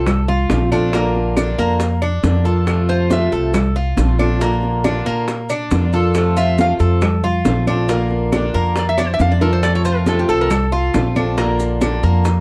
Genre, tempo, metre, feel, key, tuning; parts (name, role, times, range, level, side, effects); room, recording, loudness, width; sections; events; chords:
latin, Cuban son and guajira; 138 BPM; 4/4; straight; F major; A4 = 441 Hz
picked swing-style acoustic guitar; accompaniment; 0.0-12.3 s; C3 to F4; -24 LUFS; equal
Cuban tres; arpeggios; 0.0-12.4 s; Bb3 to A4; -24 LUFS; equal
upright bass; bass; 0.0-12.4 s; Bb1 to Bb2; -20 LUFS; equal
bongos; percussion; 0.1-12.4 s; -27 LUFS; equal
claves; percussion; 0.1-12.0 s; -33 LUFS; equal
congas; percussion; 0.1-12.4 s; -25 LUFS; equal
maracas; percussion; 0.1-12.4 s; -40 LUFS; equal
metal-body resonator slide guitar; melody; 2.9-3.3, 6.4-11.2 s; G4 to F5; -24 LUFS; equal
moderate studio reverb, RT60 0.5 s; dark, warm production; -17 LUFS; mono
0.0-12.4 A section
resonator guitar played with a steel bar solo 0.0-12.4; drum fill 9.0-9.6
0.0 F; 0.9 Bb; 2.7 F; 4.4 Bb; 6.2 F; 7.9 Bb; 9.6 F; 11.4 Bb